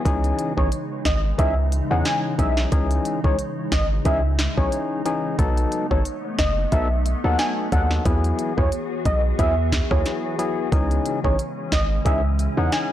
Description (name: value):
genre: dancehall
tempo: 90 BPM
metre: 4/4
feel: swing 56% on 16ths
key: C# minor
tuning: A4 = 435 Hz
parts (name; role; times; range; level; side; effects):
- percussive organ stab; accompaniment; 0.0-12.9 s; E3 to A4; -26 LUFS; left 4 dB; chorus
- glassy FM pad; sustained chords; 0.0-12.9 s; C#3 to G#4; -30 LUFS; left 1 dB; ensemble chorus, built-in reverb, sidechain pumping
- hard-hitting 808-style bass; bass; 0.1-12.7 s; F#1 to E2; -22 LUFS; equal; none
- afro-pop drum kit; drums; 0.1-12.9 s; hi-hat, kick drum, rim click, snare drum; -23 LUFS; equal; none
- warm velvety synth lead; melody; 0.6-12.9 s; C#5 to G#5; -26 LUFS; right 1 dB; chorus, tape echo
room: digital ambience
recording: blown-out, overdriven recording, overdrive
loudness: -19 LUFS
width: side -12 dB against mid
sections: 0.1-12.9 A section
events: none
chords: 0.1 C#madd9; 5.4 B7; 8.1 Eadd9; 10.7 C#madd9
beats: | 0.06 0.72 1.39 2.06 | 2.72 3.39 4.06 4.72 | 5.39 6.06 6.72 7.39 | 8.06 8.72 9.39 10.06 | 10.72 11.39 12.06 12.72